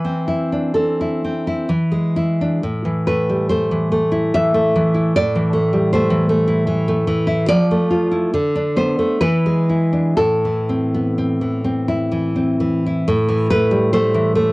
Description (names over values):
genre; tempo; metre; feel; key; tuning
romantic piece for solo classical guitar; 58-79 BPM; 3/4; rubato; A minor; A4 = 440 Hz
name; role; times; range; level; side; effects
nylon-string guitar; solo; 0.0-14.5 s; A2 to E5; -15 LUFS; equal; cassette tape
room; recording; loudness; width
moderate booth ambience, RT60 0.3 s; home recording on cassette; -15 LUFS; side -22 dB against mid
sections
0.0-13.1 A section; 13.1-14.5 B section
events
none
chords
0.0 Am/E; 1.7 E; 2.6 Am; 7.5 F; 8.3 Bm7/D; 9.2 E; 10.2 Am; 13.1 A5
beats
0.75 1.68 | 2.61 3.48 4.33 | 5.13 5.91 6.68 | 7.49 8.32 9.21 | 10.18 11.18 12.13 | 13.07 13.93